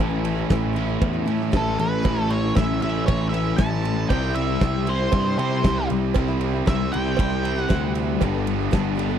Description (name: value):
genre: classic rock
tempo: 116 BPM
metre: 4/4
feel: straight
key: unclear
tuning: A4 = 440 Hz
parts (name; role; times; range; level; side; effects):
- picked old ladder-braced acoustic guitar; accompaniment; 0.0-9.2 s; A2 to A4; -34 LUFS; left 6 dB; none
- distorted electric guitar; riff; 0.0-9.2 s; G2 to E4; -28 LUFS; right 15 dB; distortion
- overdriven semi-hollow guitar; riff; 0.0-9.2 s; G2 to E4; -28 LUFS; left 15 dB; phaser
- fuzz picked electric bass; bass; 0.0-9.2 s; G1 to C3; -25 LUFS; equal; overdrive
- big rock drum kit; drums; 0.2-9.1 s; crash cymbal, kick drum, ride cymbal, snare drum; -25 LUFS; equal; none
- cowbell; percussion; 0.5-8.8 s; none; -30 LUFS; right 15 dB; none
- octave-fuzz lead guitar; melody; 1.6-7.9 s; A4 to A5; -28 LUFS; right 1 dB; distortion
room: little or no reverb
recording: dry, close 1970s-style studio recording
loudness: -20 LUFS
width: side -9 dB against mid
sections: 0.0-9.2 A section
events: none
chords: 0.0 A; 4.1 C; 8.2 Gadd9